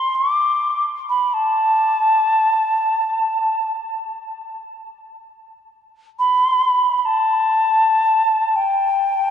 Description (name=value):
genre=world meditative, free-time meditation music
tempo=free time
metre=none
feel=none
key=unclear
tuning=A4 = 441 Hz
part: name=mellow alto ocarina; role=solo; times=0.0-9.3 s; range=G5 to D6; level=-16 LUFS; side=equal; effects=diffuse ambient delay
room=wet huge ambient reverb, RT60 5.1 s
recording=cassette tape, nothing above 10.8 kHz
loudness=-15 LUFS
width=side -8 dB against mid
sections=0.0-9.3 A section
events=none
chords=none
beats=free time